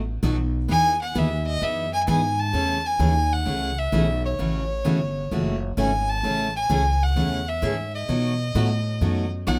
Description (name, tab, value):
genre	country, western swing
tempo	130 BPM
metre	4/4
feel	swing 68% on 8ths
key	unclear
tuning	A4 = 435 Hz
part	upright bass	bass	0.0-9.6 s	F#1 to B2	-27 LUFS	equal	none
part	picked steel-string acoustic guitar	accompaniment	0.2-9.6 s	B2 to G#4	-28 LUFS	equal	none
part	clear fiddle	melody	0.7-9.6 s	C#5 to A5	-28 LUFS	equal	none
room	light reverb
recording	none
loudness	-23 LUFS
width	mono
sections	0.0-2.5 A section; 2.5-9.6 B section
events	fiddle solo 0.0-2.5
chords	0.0 B7; 0.7 Emaj7; 2.5 Amaj7; 4.4 F#m7; 6.2 Amaj7; 8.1 B7